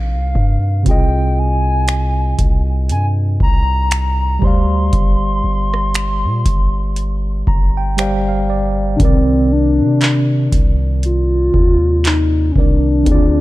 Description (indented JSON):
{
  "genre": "contemporary R&B",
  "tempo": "59 BPM",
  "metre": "4/4",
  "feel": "swing 58% on 16ths",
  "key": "C minor",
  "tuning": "A4 = 440 Hz",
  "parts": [
    { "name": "hollow clarinet-like synth lead", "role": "melody", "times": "0.0-13.4 s", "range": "C4 to C6", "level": "-19 LUFS", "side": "left 1 dB", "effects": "chorus" },
    { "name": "tine electric piano", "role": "accompaniment", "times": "0.0-13.4 s", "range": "C3 to Bb5", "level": "-21 LUFS", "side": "right 1 dB", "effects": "fast stereo tremolo" },
    { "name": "long sustained 808-style bass", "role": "bass", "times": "0.0-13.4 s", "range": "G1 to C3", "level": "-17 LUFS", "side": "equal", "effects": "none" },
    { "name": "downlifter", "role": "sound effects", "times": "0.0-0.9 s", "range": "none", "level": "-47 LUFS", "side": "left 2 dB", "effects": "none" },
    { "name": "booming analog drum machine", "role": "drums", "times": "0.4-13.3 s", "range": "finger snaps, handclaps, hi-hat, kick drum, rim click", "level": "-15 LUFS", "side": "equal", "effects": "none" }
  ],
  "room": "little or no reverb",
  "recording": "dark, warm production",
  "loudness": "-13 LUFS",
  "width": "side -17 dB against mid",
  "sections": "0.0-9.0 A section; 9.0-13.4 B section",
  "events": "tine electric piano fill 7.0-9.0",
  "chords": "0.0 Cm7; 0.9 Fm7/C; 4.4 G7sus4; 9.0 Cm9"
}